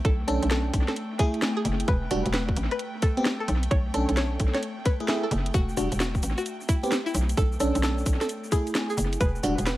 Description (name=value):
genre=UK garage, two-step garage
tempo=131 BPM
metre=4/4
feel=swing 65% on 16ths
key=unclear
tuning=A4 = 439 Hz
part: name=airy breathy pad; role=sustained chords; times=0.0-9.8 s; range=A3 to G5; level=-37 LUFS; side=left 1 dB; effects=chorus, sidechain pumping
part: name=hollow knocking FM bass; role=bass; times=0.0-9.8 s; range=E1 to B1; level=-27 LUFS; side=equal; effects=none
part: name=electronic kick drum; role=drums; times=0.0-9.3 s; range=none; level=-24 LUFS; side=equal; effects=overdrive
part: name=garage drum kit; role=drums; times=0.0-9.8 s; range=cabasa, hi-hat, rim click, snare drum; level=-31 LUFS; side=equal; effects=overdrive, analog delay
part: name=string-like resonator pluck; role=melody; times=0.1-9.8 s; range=E4 to C#5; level=-33 LUFS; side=equal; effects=chorus, vintage 12-bit sampler grit, dub echo
part: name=FM electric piano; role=stabs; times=0.3-9.6 s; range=G3 to A4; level=-29 LUFS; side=right 1 dB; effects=chorus, phaser, dub echo
room=light reverb, digital ambience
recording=echo-heavy mix, vinyl crackle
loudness=-23 LUFS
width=side -16 dB against mid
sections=0.0-9.8 A section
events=none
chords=0.0 Bm9; 1.0 F#m9; 1.9 Em9; 2.6 Am9; 3.5 Bm9; 4.6 F#m9; 5.5 Em9; 6.2 Am9; 7.1 Bm9; 8.3 F#m9; 9.2 Em9